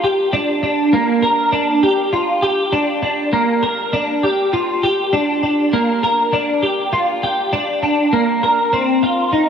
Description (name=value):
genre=dream pop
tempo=100 BPM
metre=4/4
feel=straight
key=Bb major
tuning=A4 = 441 Hz
part: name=twelve-string electric guitar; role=solo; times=0.0-9.5 s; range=Bb3 to Bb4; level=-14 LUFS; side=equal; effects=ensemble chorus, tape echo
room=wet huge ambient reverb, RT60 4.7 s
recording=none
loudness=-14 LUFS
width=side -7 dB against mid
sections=0.0-9.5 A section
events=none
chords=none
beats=0.33 0.93 | 1.53 2.13 2.73 3.33 | 3.93 4.53 5.13 5.73 | 6.33 6.93 7.53 8.13 | 8.73 9.33